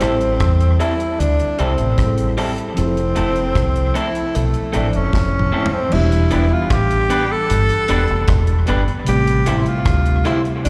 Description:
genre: lovers rock reggae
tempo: 76 BPM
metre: 4/4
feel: straight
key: A minor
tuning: A4 = 440 Hz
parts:
  - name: breathy tenor saxophone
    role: melody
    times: 0.0-10.7 s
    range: A3 to A4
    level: -23 LUFS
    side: equal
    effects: dub echo, slapback echo
  - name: mellow tine electric piano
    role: accompaniment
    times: 0.0-10.7 s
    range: C3 to C5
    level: -26 LUFS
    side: equal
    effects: none
  - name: electric guitar through a small old amp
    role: stabs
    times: 0.0-10.4 s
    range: G3 to C5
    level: -27 LUFS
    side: equal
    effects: dub echo, slapback echo
  - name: deep dub fingered electric bass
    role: bass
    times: 0.0-10.7 s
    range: E1 to E2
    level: -20 LUFS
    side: equal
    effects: none
  - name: deep reggae drum kit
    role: drums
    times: 0.0-10.7 s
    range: crash cymbal, hi-hat, kick drum, rim click, snare drum, toms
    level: -24 LUFS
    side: equal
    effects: dub echo
room: light reverb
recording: live gig heard through the venue's PA, recital hall reverb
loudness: -17 LUFS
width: mono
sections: 0.0-5.9 A section; 5.9-10.7 B section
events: drum fill 5.1-5.9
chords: 0.0 Am7; 2.8 Fmaj7; 5.9 Em7; 9.1 Am7

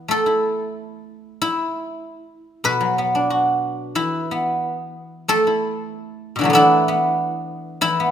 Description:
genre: chinese traditional, Chinese solo plucked strings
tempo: 88-97 BPM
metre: 2/4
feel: rubato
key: E shang mode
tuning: A4 = 438 Hz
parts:
  - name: guzheng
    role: solo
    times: 0.0-8.1 s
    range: B2 to B4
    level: -18 LUFS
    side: equal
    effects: none
room: moderate recital hall reverb, RT60 1.5 s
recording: minimal, uncompressed stereo recording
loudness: -18 LUFS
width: side -9 dB against mid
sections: 0.0-8.1 A section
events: none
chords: none

